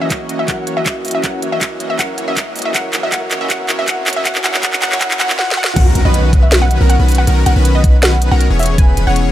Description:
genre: future bass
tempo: 159 BPM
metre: 4/4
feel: half-time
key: unclear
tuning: A4 = 440 Hz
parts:
  - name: wide unison pluck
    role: melody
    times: 0.0-9.3 s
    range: D#5 to G#5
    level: -20 LUFS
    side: equal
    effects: sidechain pumping, digital delay
  - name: dark concert grand piano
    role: accompaniment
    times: 0.0-5.8 s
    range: F#3 to A#4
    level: -28 LUFS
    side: equal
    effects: vintage 12-bit sampler grit, sidechain pumping, digital delay
  - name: big bright polysynth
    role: riff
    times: 0.0-9.3 s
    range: D#3 to D#5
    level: -21 LUFS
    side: left 1 dB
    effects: chorus, sidechain pumping
  - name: riser and impact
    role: sound effects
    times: 2.6-7.3 s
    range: none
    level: -25 LUFS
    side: equal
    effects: none
  - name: electronic kick drum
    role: drums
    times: 0.1-8.9 s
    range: none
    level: -13 LUFS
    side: equal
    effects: none
  - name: trap drum kit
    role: drums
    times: 0.1-9.2 s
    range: crash cymbal, handclaps, hi-hat, snare drum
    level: -18 LUFS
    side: equal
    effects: none
  - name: airy dreamy lead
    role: arpeggios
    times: 5.8-9.3 s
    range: A#4 to C#5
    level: -26 LUFS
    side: equal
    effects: chorus, sidechain pumping
  - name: warm 808-style bass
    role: bass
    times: 5.8-9.3 s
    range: E1 to B1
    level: -12 LUFS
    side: equal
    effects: tube saturation, sidechain pumping
room: light reverb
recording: high-pass filter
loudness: -12 LUFS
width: side -12 dB against mid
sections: 0.0-5.8 A section; 5.8-9.3 B section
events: build-up 0.0-5.8; drum fill 0.0-5.4, 5.4-5.8; filter sweep on analog polysynth 0.0-5.8; filter sweep 0.0-5.8; drop 5.8-9.3; impact 5.8-7.3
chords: 0.0 F#7; 5.8 E6

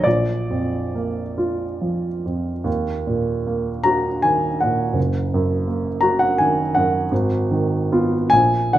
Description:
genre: classical, romantic nocturne for solo piano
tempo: 44-58 BPM (dotted quarters)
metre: 6/8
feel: rubato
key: Eb minor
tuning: A4 = 438 Hz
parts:
  - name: warm upright piano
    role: solo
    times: 0.0-8.8 s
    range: Gb1 to Bb5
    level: -18 LUFS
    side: right 1 dB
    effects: none
room: moderate recital hall reverb, RT60 1.5 s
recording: close, detailed microphones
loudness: -18 LUFS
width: side -13 dB against mid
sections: 0.0-8.8 A section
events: none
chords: 0.1 Bb; 2.7 Ebm; 5.0 Ebm/Gb; 7.1 Fm7b5/Ab

